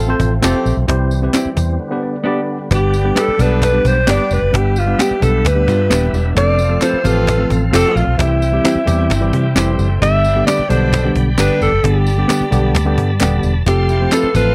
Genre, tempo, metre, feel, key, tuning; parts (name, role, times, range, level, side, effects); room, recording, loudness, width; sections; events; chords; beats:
uptempo 1960s-style soul; 131 BPM; 4/4; straight; G mixolydian; A4 = 440 Hz
mellow horn section; second line; 0.0-14.5 s; B2 to B4; -26 LUFS; equal; plate reverb
percussive tonewheel organ; sustained chords; 0.0-14.5 s; D3 to C6; -30 LUFS; equal; overdrive, fast rotary speaker, plate reverb
vintage muted fingered electric bass; bass; 0.0-14.5 s; Eb1 to C3; -18 LUFS; equal
tine electric piano; accompaniment; 0.1-14.5 s; D3 to B5; -22 LUFS; equal
cajon; drums; 0.2-14.5 s; -22 LUFS; equal
tambourine and handclaps; percussion; 0.2-14.5 s; -29 LUFS; equal
mellow electric guitar; stabs; 0.4-14.3 s; B3 to A4; -22 LUFS; equal; plate reverb
warm alto saxophone; melody; 2.7-14.5 s; E4 to E5; -20 LUFS; equal
electric guitar through a small old amp; riff; 5.7-10.0 s; B3 to C5; -28 LUFS; equal
light reverb; dark, warm production; -15 LUFS; mono
0.0-2.7 A section; 2.7-14.5 A section
break 1.8-2.7; tine electric piano fill 1.8-2.7
0.0 F; 0.9 C; 1.8 G; 6.4 F; 8.2 C; 10.0 G; 13.7 F
0.43 | 0.88 1.34 1.80 2.25 | 2.71 3.17 3.62 4.08 | 4.54 4.99 5.45 5.91 | 6.36 6.82 7.28 7.73 | 8.19 8.65 9.11 9.56 | 10.02 10.47 10.93 11.39 | 11.84 12.30 12.76 13.21 | 13.67 14.12